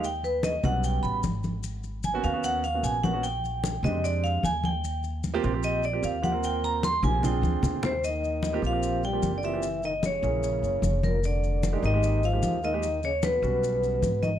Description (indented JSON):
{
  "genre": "Afro-Cuban jazz",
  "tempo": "150 BPM",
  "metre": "4/4",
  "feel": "straight",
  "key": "unclear",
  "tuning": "A4 = 440 Hz",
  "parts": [
    { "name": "vibraphone with medium hard mallets", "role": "melody", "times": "0.0-14.3 s", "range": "Bb4 to C6", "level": "-28 LUFS", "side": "equal", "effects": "none" },
    { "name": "warm grand piano", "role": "accompaniment", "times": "0.0-14.0 s", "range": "G3 to Bb4", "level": "-32 LUFS", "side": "right 8 dB", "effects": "none" },
    { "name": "upright bass", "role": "bass", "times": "0.0-14.4 s", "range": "F1 to F2", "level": "-29 LUFS", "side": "equal", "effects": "none" },
    { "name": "congas", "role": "percussion", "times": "0.0-14.4 s", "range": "none", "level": "-32 LUFS", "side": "left 2 dB", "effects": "none" },
    { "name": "maracas", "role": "percussion", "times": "0.0-14.4 s", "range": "none", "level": "-44 LUFS", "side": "left 13 dB", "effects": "none" },
    { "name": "warm French horn", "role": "second line", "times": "7.8-14.3 s", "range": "Bb2 to G3", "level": "-34 LUFS", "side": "left 6 dB", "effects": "none" }
  ],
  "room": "studio ambience",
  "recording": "dry, close 1970s-style studio recording",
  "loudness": "-24 LUFS",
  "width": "side -10 dB against mid",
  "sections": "0.0-8.0 A section; 8.0-14.4 B section",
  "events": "vibraphone solo 0.0-8.0; drum fill 7.4-8.0",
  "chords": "0.0 Eb7alt; 1.6 Abm11; 3.2 Bb13; 4.8 Eb6; 7.2 Bb7; 8.0 Eb6; 9.6 Gb9; 11.2 Fm11; 12.8 Eb7alt"
}